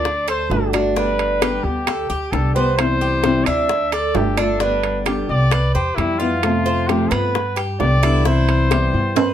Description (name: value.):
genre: latin, Cuban son and guajira.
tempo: 132 BPM.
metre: 4/4.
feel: straight.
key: C major.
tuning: A4 = 440 Hz.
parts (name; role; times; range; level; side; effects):
warm trumpet; melody; 0.0-9.3 s; E4 to E5; -22 LUFS; left 2 dB; none.
flamenco guitar; accompaniment; 0.0-9.2 s; C3 to G4; -22 LUFS; left 2 dB; none.
Cuban tres; arpeggios; 0.0-9.3 s; B3 to F5; -23 LUFS; right 3 dB; none.
upright bass; bass; 0.0-9.3 s; G1 to G2; -21 LUFS; equal; none.
bongos; percussion; 0.1-9.3 s; none; -26 LUFS; left 7 dB; none.
timbales; percussion; 0.3-9.3 s; none; -23 LUFS; right 9 dB; none.
room: light reverb.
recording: dark, warm production.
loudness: -16 LUFS.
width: side -10 dB against mid.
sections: 0.0-9.3 A section.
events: drum fill 9.2.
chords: 0.1 D; 1.0 Gadd9; 2.8 C; 3.7 Dm; 4.6 G; 5.5 Cmaj7; 6.4 F; 7.3 G; 8.3 Cmaj7.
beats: 0.05 0.51 | 0.96 1.42 1.88 2.33 | 2.79 3.24 3.70 4.16 | 4.61 5.07 5.52 5.98 | 6.43 6.89 7.35 7.80 | 8.26 8.71 9.17.